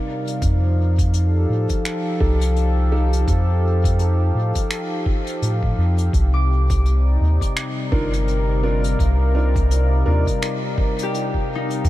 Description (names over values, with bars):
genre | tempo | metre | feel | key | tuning
ambient dub | 84 BPM | 4/4 | swing 58% on 16ths | C dorian | A4 = 440 Hz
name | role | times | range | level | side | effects
warm analog pad | sustained chords | 0.0-11.9 s | C3 to F5 | -24 LUFS | left 1 dB | chorus
vintage brush drum kit | drums | 0.3-11.9 s | finger snaps, hi-hat | -32 LUFS | left 1 dB | dub echo
soft dub sub bass | bass | 0.4-11.9 s | G1 to A2 | -17 LUFS | equal | none
electronic kick drum | drums | 0.4-11.9 s | none | -22 LUFS | equal | none
warm upright piano | stabs | 2.2-3.1, 7.9-10.2 s | D4 to Bb4 | -30 LUFS | right 2 dB | dub echo
concert harp | arpeggios | 6.3-11.9 s | Eb4 to D6 | -30 LUFS | left 2 dB | dub echo
room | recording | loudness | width
light reverb, studio reverb | none | -17 LUFS | side -15 dB against mid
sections
0.0-11.9 A section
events
none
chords
0.4 F9; 6.1 Cm11